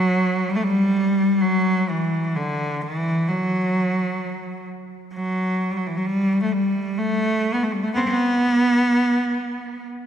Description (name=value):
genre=caucasian folk, Caucasian lament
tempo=64 BPM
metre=3/4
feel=rubato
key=unclear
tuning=A4 = 440 Hz
part: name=clear cello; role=solo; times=0.0-9.8 s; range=D3 to C4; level=-19 LUFS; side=equal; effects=none
room=wet church reverb, RT60 2.9 s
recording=none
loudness=-19 LUFS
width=side -9 dB against mid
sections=0.0-10.1 A section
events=none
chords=none